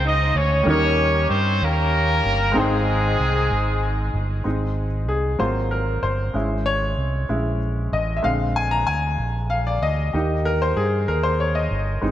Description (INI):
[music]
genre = slow gospel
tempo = 63 BPM (dotted quarters)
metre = 6/8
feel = straight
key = Ab major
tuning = A4 = 440 Hz
[part]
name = clear horn section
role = melody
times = 0.0-4.2 s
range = Ab3 to Eb5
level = -21 LUFS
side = equal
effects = tape echo
[part]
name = clear baby grand piano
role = accompaniment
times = 0.0-12.1 s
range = Ab2 to C6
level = -23 LUFS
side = left 1 dB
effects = none
[part]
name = fingered electric bass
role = bass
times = 0.0-12.1 s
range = G1 to G2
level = -23 LUFS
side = equal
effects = none
[sound]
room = moderate plate reverb, RT60 2.7 s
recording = dreamy mix soaked in reverb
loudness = -19 LUFS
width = side -12 dB against mid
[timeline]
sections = 0.0-4.5 A section; 4.5-12.1 B section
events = grand piano solo 4.5-12.1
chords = 0.0 Dbmaj7; 0.7 Eb7; 2.6 Abmaj7; 4.5 Ab; 5.4 Ab13; 6.3 Dbm/Ab; 8.2 Bb7; 10.1 Eb